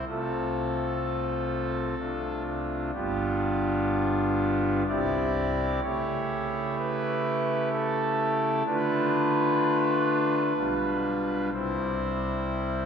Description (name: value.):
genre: classical, chorale-style piece for pipe organ.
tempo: 63 BPM.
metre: 3/4.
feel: straight.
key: C major.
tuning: A4 = 441 Hz.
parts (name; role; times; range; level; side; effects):
pipe organ, foundations; solo; 0.0-12.9 s; G1 to D5; -25 LUFS; equal; none.
room: wet church reverb, RT60 2.8 s.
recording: recorded in a church or concert hall.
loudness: -25 LUFS.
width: side -7 dB against mid.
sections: 0.0-12.9 A section.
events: none.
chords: 0.1 F/C; 2.0 Dm/C; 2.9 G7; 4.9 C; 5.8 A7/C#; 8.7 Dm; 10.6 G7/B; 11.5 C.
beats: | 0.08 1.03 1.99 | 2.94 3.89 4.87 | 5.82 6.77 7.72 | 8.66 9.61 10.57 | 11.53 12.48.